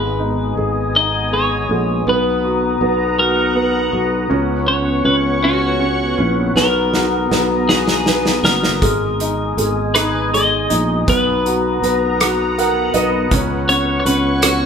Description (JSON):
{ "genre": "six-eight pop ballad", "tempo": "53 BPM (dotted quarters)", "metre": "6/8", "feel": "straight", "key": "B major", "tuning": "A4 = 440 Hz", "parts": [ { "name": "twelve-string electric guitar", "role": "melody", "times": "0.0-14.7 s", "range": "F#4 to D#5", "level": "-20 LUFS", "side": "left 1 dB", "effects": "harmonic tremolo" }, { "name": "clear baby grand piano", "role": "accompaniment", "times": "0.0-14.7 s", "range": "G#3 to F#5", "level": "-20 LUFS", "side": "right 1 dB", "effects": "none" }, { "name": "sweeping resonant pad", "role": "sustained chords", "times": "0.0-14.7 s", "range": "B3 to D#6", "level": "-21 LUFS", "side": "left 2 dB", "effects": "chorus" }, { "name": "sustaining fretless electric bass", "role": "bass", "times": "0.0-14.7 s", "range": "F#1 to C#2", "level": "-21 LUFS", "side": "equal", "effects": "none" }, { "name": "loose indie drum kit", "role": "drums", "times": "6.6-14.6 s", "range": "hi-hat, kick drum, rim click, snare drum", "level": "-19 LUFS", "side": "equal", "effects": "none" } ], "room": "moderate large studio reverb, RT60 1.1 s", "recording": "band playing live in one room", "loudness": "-14 LUFS", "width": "side -7 dB against mid", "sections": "0.0-14.7 A section", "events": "drum fill 6.6-8.8; grand piano fill 12.2-13.3", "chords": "0.0 G#m; 2.1 Bmaj7; 4.3 F#sus4/C#; 6.6 Bmaj7; 8.8 G#m; 11.1 Bmaj7; 13.3 F#sus4" }